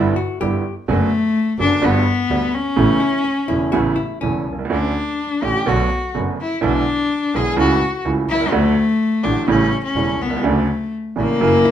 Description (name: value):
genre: tango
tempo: 125 BPM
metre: 4/4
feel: rubato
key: D major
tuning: A4 = 440 Hz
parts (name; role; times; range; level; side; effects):
- hollow-body jazz guitar; second line; 0.0-4.6, 11.7 s; C#4 to G4; -26 LUFS; left 6 dB; none
- rich cello; second line; 0.0-11.7 s; A3 to G#4; -19 LUFS; left 3 dB; none
- bright upright piano; accompaniment; 0.0-11.6 s; E1 to F#4; -20 LUFS; right 4 dB; none
- rich double bass; bass; 0.0-11.6 s; E1 to D2; -23 LUFS; right 1 dB; none
room: wet studio reverb, RT60 0.8 s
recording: minimal, uncompressed stereo recording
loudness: -16 LUFS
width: side -10 dB against mid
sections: 0.0-11.7 A section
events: cello solo 0.0-11.7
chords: 0.0 Em7/G; 0.9 Bm7/F#; 1.8 Gmaj7; 2.8 Aadd9; 4.7 Dmaj7; 5.7 Bm7; 6.6 E7/B; 7.6 A/C#; 8.5 D; 9.5 A7; 10.4 Dmaj7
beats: 0.40 | 0.88 1.35 1.82 2.29 | 2.77 3.25 3.73 4.22 | 4.71 5.19 5.67 6.15 | 6.63 7.11 7.58 8.05 | 8.53 9.01 9.48 9.96 | 10.44 10.92 11.41